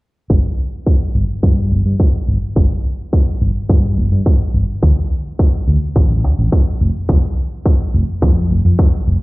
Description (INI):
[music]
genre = nu-disco, nu disco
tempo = 106 BPM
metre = 4/4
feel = straight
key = unclear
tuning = A4 = 440 Hz
[part]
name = hollow-body short-scale fingered electric bass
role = bass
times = 0.3-9.2 s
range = F1 to G2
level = -14 LUFS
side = equal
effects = none
[part]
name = electronic kick drum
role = drums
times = 0.3-8.9 s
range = none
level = -13 LUFS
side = equal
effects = overdrive
[sound]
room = little or no reverb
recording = played on a big sound system in a bare room, large studio reverb, low-pass filter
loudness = -13 LUFS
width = side -21 dB against mid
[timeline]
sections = 0.3-9.2 A section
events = filter sweep on fingered electric bass 0.3-9.2; filter sweep 0.3-9.2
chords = none